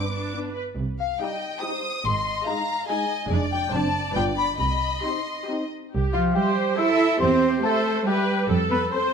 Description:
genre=cinematic, playful, whimsical film cue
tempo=140 BPM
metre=3/4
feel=straight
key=C minor, C major from 5.9 s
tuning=A4 = 440 Hz
part: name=celesta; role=melody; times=0.0-9.1 s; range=F5 to E6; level=-29 LUFS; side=left 7 dB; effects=none
part: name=warm studio violin section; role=melody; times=0.0-9.1 s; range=E5 to Eb6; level=-30 LUFS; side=left 4 dB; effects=none
part: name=rich studio violin section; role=second line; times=0.0-9.1 s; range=F4 to F5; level=-32 LUFS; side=left 1 dB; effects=none
part: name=warm French horn section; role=sustained chords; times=0.0-9.1 s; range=G3 to E5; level=-32 LUFS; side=left 3 dB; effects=none
part: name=bright studio viola section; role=accompaniment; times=0.1-9.1 s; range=D4 to C5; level=-29 LUFS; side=right 2 dB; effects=none
part: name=rich studio cello section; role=bass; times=0.8-9.1 s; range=F2 to E4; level=-26 LUFS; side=right 4 dB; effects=none
part: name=rich studio double bass section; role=bass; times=0.8-8.8 s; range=F1 to F2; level=-28 LUFS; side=right 3 dB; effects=none
part: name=dark clarinet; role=second line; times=6.1-9.1 s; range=F4 to E5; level=-31 LUFS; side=left 1 dB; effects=none
part: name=mellow flute section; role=second line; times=6.1-9.1 s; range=F4 to E5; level=-30 LUFS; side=equal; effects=none
part: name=warm oboe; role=second line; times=6.1-9.1 s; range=F4 to E5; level=-32 LUFS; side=right 1 dB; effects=none
room=moderate scoring stage reverb, RT60 1.5 s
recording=close, detailed microphones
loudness=-21 LUFS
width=side -6 dB against mid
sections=0.0-5.9 A section; 5.9-9.1 B section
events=none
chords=0.0 G (rootless); 0.8 Cm; 2.1 Ab; 3.3 Ddim/F; 3.7 D7/F#; 4.2 G7; 4.6 Cm; 5.9 C; 7.2 C/E; 8.5 F

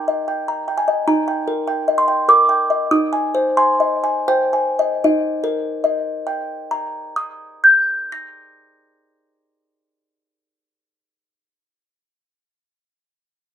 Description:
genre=classical, lullaby for music box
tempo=76-102 BPM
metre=3/4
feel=rubato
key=Eb major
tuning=A4 = 440 Hz
part: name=music box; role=solo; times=0.0-11.1 s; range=Eb4 to Bb6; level=-16 LUFS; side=equal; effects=none
room=little or no reverb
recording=recorded outdoors, with no room sound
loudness=-16 LUFS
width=side -9 dB against mid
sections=0.0-1.1 A section; 1.1-5.0 B section; 5.0-9.7 C section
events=slowing down 0.2-5.0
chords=0.0 Eb; 2.9 Ab/Eb; 5.0 Eb

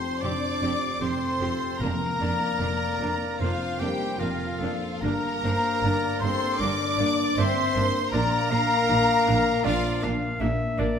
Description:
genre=cinematic, emotional film score for orchestra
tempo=77 BPM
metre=4/4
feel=rubato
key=unclear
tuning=A4 = 440 Hz
part: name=rich studio violin section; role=melody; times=0.0-10.0 s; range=F5 to D6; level=-32 LUFS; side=left 1 dB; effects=none
part: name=clear clarinet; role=second line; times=0.0-11.0 s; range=A4 to F5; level=-33 LUFS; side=equal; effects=none
part: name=clear studio violin section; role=second line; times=0.0-10.0 s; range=F4 to D5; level=-35 LUFS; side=left 2 dB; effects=none
part: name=mellow hollow flute section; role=second line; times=0.0-10.0 s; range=F5 to D6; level=-31 LUFS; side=left 2 dB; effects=none
part: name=warm oboe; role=second line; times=0.0-10.0 s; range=F4 to D5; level=-33 LUFS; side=right 2 dB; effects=none
part: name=felt-muted upright piano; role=accompaniment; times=0.0-11.0 s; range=F1 to D5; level=-30 LUFS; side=left 1 dB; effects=none
part: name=dark French horn section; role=sustained chords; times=0.0-10.0 s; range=F3 to D4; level=-30 LUFS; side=left 5 dB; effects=none
part: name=clear symphonic viola section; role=accompaniment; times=0.2-10.9 s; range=Bb3 to G4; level=-36 LUFS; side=right 3 dB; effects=none
part: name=dark symphonic double bass section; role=bass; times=0.2-10.9 s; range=F1 to Bb1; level=-32 LUFS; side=right 4 dB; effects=none
part: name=rich symphonic cello section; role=bass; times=0.2-10.9 s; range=F2 to Bb2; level=-35 LUFS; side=right 3 dB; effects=none
part: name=timpani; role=percussion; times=1.8-3.0 s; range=F2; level=-38 LUFS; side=left 1 dB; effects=none
room=wet scoring stage reverb, RT60 1.6 s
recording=none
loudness=-22 LUFS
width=side -7 dB against mid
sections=0.0-11.0 A section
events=none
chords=0.0 Fadd9; 1.8 Bb/F; 5.0 Gm; 8.1 Bb

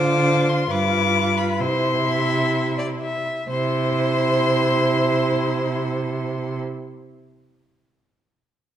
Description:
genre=quick classical-period movement for string quartet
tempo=free time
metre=none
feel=none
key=C major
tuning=A4 = 436 Hz
part: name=clear violin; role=melody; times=0.0-6.6 s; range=B5 to D6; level=-26 LUFS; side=left 6 dB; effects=none
part: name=rich violin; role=second line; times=0.0-6.6 s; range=B4 to E5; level=-24 LUFS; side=left 1 dB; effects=none
part: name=rich viola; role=accompaniment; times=0.0-6.6 s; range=E4 to F4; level=-25 LUFS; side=right 1 dB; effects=none
part: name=rich cello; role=bass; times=0.0-6.6 s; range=G2 to D3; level=-24 LUFS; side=right 3 dB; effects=none
room=wet recital hall reverb, RT60 1.4 s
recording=dark, warm production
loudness=-19 LUFS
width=side -10 dB against mid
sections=0.0-3.5 A section; 3.5-7.2 B section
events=slowing down 0.0-3.5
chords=0.0 Dm7; 0.7 G7; 1.6 C

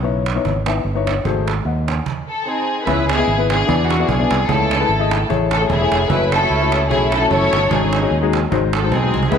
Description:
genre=uptempo gospel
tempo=149 BPM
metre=4/4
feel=swing 55% on 8ths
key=C# minor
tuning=A4 = 439 Hz
part: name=warm upright piano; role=accompaniment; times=0.0-9.4 s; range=G#2 to G#5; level=-21 LUFS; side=left 9 dB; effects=none
part: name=fingered electric bass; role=bass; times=0.0-9.4 s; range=E1 to E2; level=-20 LUFS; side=right 1 dB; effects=none
part: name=cajon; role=drums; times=0.0-9.4 s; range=none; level=-24 LUFS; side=right 9 dB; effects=none
part: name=warm studio string section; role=melody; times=2.3-9.4 s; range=B3 to C#5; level=-18 LUFS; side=equal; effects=none
room=moderate echo chamber reverb, RT60 2.3 s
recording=1960s-style stereo with parts hard left and right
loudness=-15 LUFS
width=side -7 dB against mid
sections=0.0-2.9 A section; 2.9-9.4 B section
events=stop 2.1-2.9; drum fill 8.9-9.3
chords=0.0 C#m9; 1.3 G#7b9; 2.9 C#m7; 3.7 E7; 4.5 Amaj7; 6.1 F#m7; 7.7 G#7sus4; 8.5 G#7

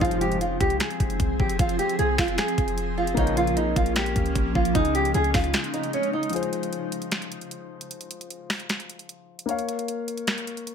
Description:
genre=hip hop, trap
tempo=152 BPM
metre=4/4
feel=half-time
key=F minor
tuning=A4 = 440 Hz
part: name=nylon-string guitar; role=melody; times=0.0-6.3 s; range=Db4 to Ab4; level=-26 LUFS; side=right 2 dB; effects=ping-pong delay
part: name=dark concert grand piano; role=accompaniment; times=0.0-10.7 s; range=Db3 to F5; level=-32 LUFS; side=left 6 dB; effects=none
part: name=granular cloud pad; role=sustained chords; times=0.0-6.3 s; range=Db3 to Ab4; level=-31 LUFS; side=equal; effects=built-in reverb
part: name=mellow synth brass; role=stabs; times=0.0-0.4, 3.2-3.5 s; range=C2 to F3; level=-30 LUFS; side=equal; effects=chorus
part: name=clean 808-style bass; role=bass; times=0.0-5.5 s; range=F1 to Db2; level=-28 LUFS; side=equal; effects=none
part: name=trap drum kit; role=drums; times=0.0-10.7 s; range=finger snaps, hi-hat, kick drum, snare drum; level=-27 LUFS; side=equal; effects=none
room=light reverb, digital ambience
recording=none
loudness=-22 LUFS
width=side -7 dB against mid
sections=0.0-6.3 A section; 6.3-10.7 B section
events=break 5.5-6.3, 6.3-10.7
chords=0.0 Fm; 3.2 Bbm; 4.8 Dbsus2; 6.3 Fm; 9.5 Bbm

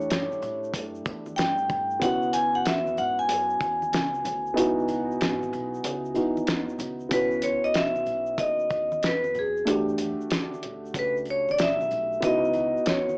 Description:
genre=hip hop, jazz-hop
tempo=94 BPM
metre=4/4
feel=swing 65% on 16ths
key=C# minor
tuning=A4 = 440 Hz
part: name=vibraphone with medium hard mallets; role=melody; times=0.0-13.2 s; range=G#4 to G#5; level=-25 LUFS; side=equal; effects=none
part: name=dark upright piano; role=accompaniment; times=0.0-13.2 s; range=A3 to G4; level=-29 LUFS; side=equal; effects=none
part: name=upright bass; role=bass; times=0.0-13.2 s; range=G#1 to A2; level=-42 LUFS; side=equal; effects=none
part: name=tube shaker and congas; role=percussion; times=0.0-13.2 s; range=none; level=-46 LUFS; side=equal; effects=none
part: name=cloth-damped thuddy drum kit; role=drums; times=0.1-13.1 s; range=hi-hat, kick drum, shaker, snare drum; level=-29 LUFS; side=equal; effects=none
room=light reverb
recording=worn, warbling old tape, cassette tape, warbly pitch drift, small speaker sound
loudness=-23 LUFS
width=side -30 dB against mid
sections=0.0-7.1 A section; 7.1-13.2 B section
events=kick muted 4.6-7.1; vibraphone solo 7.1-13.2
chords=0.0 Em11; 2.0 C#m11; 9.7 Em11; 12.2 C#m11

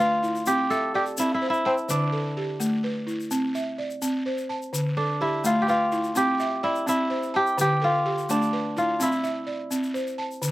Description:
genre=west african traditional, West African string and xylophone music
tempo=84 BPM (dotted quarters)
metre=12/8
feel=straight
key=unclear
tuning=A4 = 440 Hz
part: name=kora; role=melody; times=0.0-10.5 s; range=C4 to A4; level=-24 LUFS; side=equal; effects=none
part: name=balafon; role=arpeggios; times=0.0-10.5 s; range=D3 to A5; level=-26 LUFS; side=equal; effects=none
part: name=egg shaker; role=percussion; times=0.2-10.5 s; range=none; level=-36 LUFS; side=left 5 dB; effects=none
room=light reverb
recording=recorded outdoors, with no room sound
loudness=-22 LUFS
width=side -16 dB against mid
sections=0.0-10.4 A section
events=none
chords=0.5 C; 1.9 D5; 3.3 C; 4.7 Dm; 6.2 C; 7.6 Dm; 9.0 C

